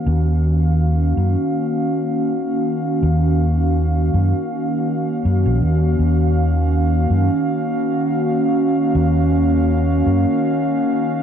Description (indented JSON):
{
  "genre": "ambient dub",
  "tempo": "81 BPM",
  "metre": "4/4",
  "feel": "swing 55% on 16ths",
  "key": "Eb minor",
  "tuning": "A4 = 444 Hz",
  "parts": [
    { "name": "warbly tape-like pad", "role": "sustained chords", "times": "0.0-11.2 s", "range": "Eb3 to F5", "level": "-18 LUFS", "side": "equal", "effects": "chorus, built-in reverb" },
    { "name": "fingered electric bass", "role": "bass", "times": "0.1-10.2 s", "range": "Bb1 to Gb2", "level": "-16 LUFS", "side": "equal", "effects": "none" }
  ],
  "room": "moderate echo chamber reverb, RT60 1.6 s",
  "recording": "dark, warm production",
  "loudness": "-16 LUFS",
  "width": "side -8 dB against mid",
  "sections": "0.0-11.2 A section",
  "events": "none",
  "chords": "0.0 Ebm7"
}